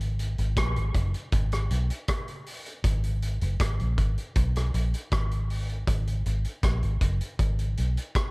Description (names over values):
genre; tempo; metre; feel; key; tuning
dub reggae; 79 BPM; 4/4; straight; unclear; A4 = 439 Hz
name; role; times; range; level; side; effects
vintage muted fingered electric bass; bass; 0.0-8.0 s; Gb1 to Cb2; -26 LUFS; equal; none
vintage drum kit; drums; 0.0-8.3 s; hi-hat, kick drum, rim click; -28 LUFS; equal; none
room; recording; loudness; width
little or no reverb; none; -25 LUFS; side -28 dB against mid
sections
0.0-8.3 A section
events
none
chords
none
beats
0.57 1.32 2.08 | 2.84 3.60 4.36 5.12 | 5.87 6.63 7.39 8.15